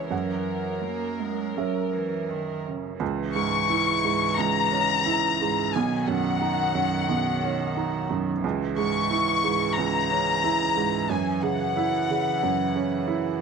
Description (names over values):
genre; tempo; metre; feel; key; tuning
neoclassical piano and strings; 89 BPM; 4/4; rubato; C# dorian; A4 = 441 Hz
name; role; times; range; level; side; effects
warm chamber violin section; melody; 0.0-13.4 s; A#4 to C#6; -26 LUFS; left 7 dB; none
rich cello; second line; 0.0-13.4 s; C#3 to A#3; -33 LUFS; right 6 dB; none
felt-muted upright piano; accompaniment; 0.0-13.4 s; B1 to G#5; -26 LUFS; right 6 dB; none
room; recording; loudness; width
moderate echo chamber reverb, RT60 2.2 s; 1960s-style stereo with parts hard left and right; -23 LUFS; side -5 dB against mid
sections
0.0-3.0 A section; 3.0-13.4 B section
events
none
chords
0.1 F#7; 3.0 C#m; 5.7 Badd9; 8.4 C#m; 11.1 F#5